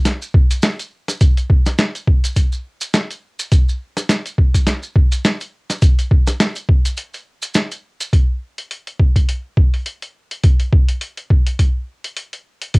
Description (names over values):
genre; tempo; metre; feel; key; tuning
glitch hop; 104 BPM; 4/4; swing 57% on 16ths; none; none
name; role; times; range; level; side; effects
boom bap sampler-style drum kit; drums; 0.1-12.8 s; hi-hat, snare drum; -19 LUFS; equal; none
maracas; percussion; 0.1-8.1 s; none; -28 LUFS; right 2 dB; none
electronic kick drum; drums; 0.3-12.8 s; none; -13 LUFS; equal; none
room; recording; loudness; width
light reverb; home recording on cassette; -14 LUFS; side -31 dB against mid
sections
0.0-8.1 A section; 8.1-12.8 B section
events
break 7.0-8.1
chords
none